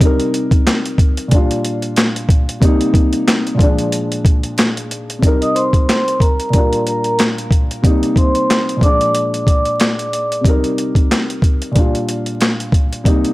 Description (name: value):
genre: hip hop, boom-bap hip-hop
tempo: 92 BPM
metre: 4/4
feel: swing 56% on 16ths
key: C minor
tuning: A4 = 440 Hz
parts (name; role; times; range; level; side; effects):
- dark grand piano; accompaniment; 0.0-13.3 s; Bb2 to Bb4; -18 LUFS; left 1 dB; high-pass filter, low-pass filter
- boom bap sampler-style drum kit; drums; 0.0-13.3 s; handclaps, hi-hat, kick drum, snare drum; -14 LUFS; equal; overdrive
- vibraphone with soft mallets; melody; 5.4-10.4 s; Bb4 to Eb6; -18 LUFS; equal; high-pass filter, low-pass filter
room: small room ambience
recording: dry, gritty hardware recording, transformer saturation, vinyl crackle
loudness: -13 LUFS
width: side -18 dB against mid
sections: 0.0-5.2 A section; 5.2-13.3 B section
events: none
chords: 0.0 Cm7; 1.3 Gm7/Bb; 2.6 Cm7; 3.6 Bb7; 5.2 Cm7; 6.5 Gm7/Bb; 7.8 Cm7; 8.8 Bb7; 10.4 Cm7; 11.8 Gm7/Bb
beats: | 0.01 0.66 1.32 1.97 | 2.62 3.27 3.92 4.58 | 5.23 5.88 6.53 7.19 | 7.84 8.49 9.14 9.79 | 10.45 11.10 11.75 12.40 | 13.05